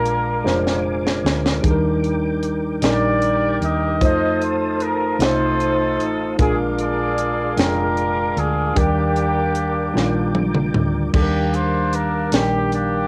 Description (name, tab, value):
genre	slow gospel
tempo	50 BPM (dotted quarters)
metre	6/8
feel	straight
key	Eb major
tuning	A4 = 443 Hz
part	clear horn section	melody	0.0-13.1 s	Bb3 to Eb5	-24 LUFS	equal	cassette tape
part	tine electric piano	accompaniment	0.0-13.1 s	Bb2 to G5	-24 LUFS	equal	none
part	tonewheel organ	sustained chords	0.0-11.1 s	Ab4 to Eb6	-34 LUFS	equal	slow rotary speaker, overdrive, chorus vibrato
part	hollow-body short-scale fingered electric bass	bass	0.0-13.1 s	F1 to F2	-27 LUFS	equal	none
part	tight funk drum kit	drums	0.1-12.9 s	crash cymbal, hi-hat, kick drum, snare drum, toms	-24 LUFS	equal	cassette tape
room	light reverb, small room ambience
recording	home recording on cassette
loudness	-19 LUFS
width	mono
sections	0.0-11.1 A section; 11.1-13.1 A section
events	drum fill 0.5-1.6, 10.0-11.1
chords	0.0 Bb7; 1.6 Ebmaj7; 4.0 F7; 6.4 Bb7; 8.8 Ebmaj7